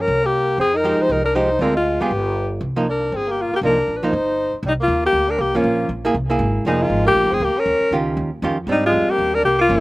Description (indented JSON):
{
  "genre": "jazz, small-group swing and bop",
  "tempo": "237 BPM",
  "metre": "4/4",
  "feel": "swing 58% on 8ths",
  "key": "C minor",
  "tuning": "A4 = 438 Hz",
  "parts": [
    { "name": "breathy alto saxophone", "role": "melody", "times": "0.0-9.8 s", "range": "Eb4 to C5", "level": "-18 LUFS", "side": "left 1 dB", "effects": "none" },
    { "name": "mellow tenor saxophone", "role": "second line", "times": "0.0-9.8 s", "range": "G3 to Eb4", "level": "-24 LUFS", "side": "right 2 dB", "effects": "slapback echo" },
    { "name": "archtop guitar, miked and amplified", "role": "accompaniment", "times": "0.0-9.8 s", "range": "D3 to Ab4", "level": "-21 LUFS", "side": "right 2 dB", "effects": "none" },
    { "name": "upright bass", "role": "bass", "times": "0.0-9.8 s", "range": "F1 to Ab2", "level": "-25 LUFS", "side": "equal", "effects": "none" }
  ],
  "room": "little or no reverb",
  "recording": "recorded outdoors, with no room sound",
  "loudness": "-16 LUFS",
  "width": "side -20 dB against mid",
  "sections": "0.0-4.6 A section; 4.6-9.8 B section",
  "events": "none",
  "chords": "0.1 C5; 0.6 Fm9; 1.6 Dm7b5; 2.1 G; 2.6 Cm11; 4.6 Cm7; 5.6 Bbm7; 6.2 Caug7; 6.7 Fm11; 7.7 Eb9; 8.7 Abmaj9#11"
}